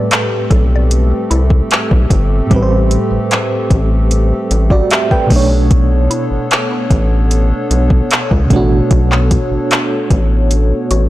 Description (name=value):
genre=contemporary R&B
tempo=75 BPM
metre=4/4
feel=straight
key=A dorian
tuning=A4 = 438 Hz
part: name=FM electric piano with tremolo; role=accompaniment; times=0.0-11.1 s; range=A2 to G5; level=-18 LUFS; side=right 2 dB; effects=none
part: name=hollow soft pad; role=sustained chords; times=0.0-11.1 s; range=A3 to C#5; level=-20 LUFS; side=left 1 dB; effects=chorus, sidechain pumping
part: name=mallet-like synth pluck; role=texture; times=0.0-11.1 s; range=E4 to D5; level=-27 LUFS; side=left 3 dB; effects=chorus, digital delay
part: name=smooth R&B drum kit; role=drums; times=0.1-11.1 s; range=handclaps, hi-hat, kick drum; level=-14 LUFS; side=equal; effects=overdrive
part: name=rubbery square bass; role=bass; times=0.5-11.1 s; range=G1 to C#2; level=-13 LUFS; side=equal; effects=none
room=digital ambience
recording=blown-out, overdriven recording, overdrive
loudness=-10 LUFS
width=side -16 dB against mid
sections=0.0-11.1 A section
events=none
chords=0.0 Am9; 5.3 Bm9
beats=0.11 0.91 1.71 | 2.51 3.31 4.11 4.91 | 5.71 6.51 7.31 8.11 | 8.91 9.71 10.51